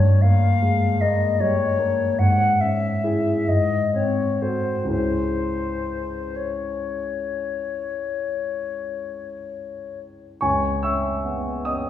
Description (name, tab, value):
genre	classical, romantic duo for flute and grand piano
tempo	40-52 BPM (dotted quarters)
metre	12/8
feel	rubato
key	C# minor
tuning	A4 = 440 Hz
part	concert flute	melody	0.0-10.0 s	B#4 to F#5	-24 LUFS	left 4 dB	none
part	warm grand piano	accompaniment	0.0-11.9 s	C#2 to E6	-21 LUFS	equal	none
room	wet recital hall reverb, RT60 1.5 s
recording	heard from further back in the room, small room reverb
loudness	-20 LUFS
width	side -11 dB against mid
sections	0.0-10.4 A section; 10.4-11.9 A section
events	none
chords	0.0 Gm7b5; 2.2 C#m/G#; 3.5 G#7b9; 4.9 C#m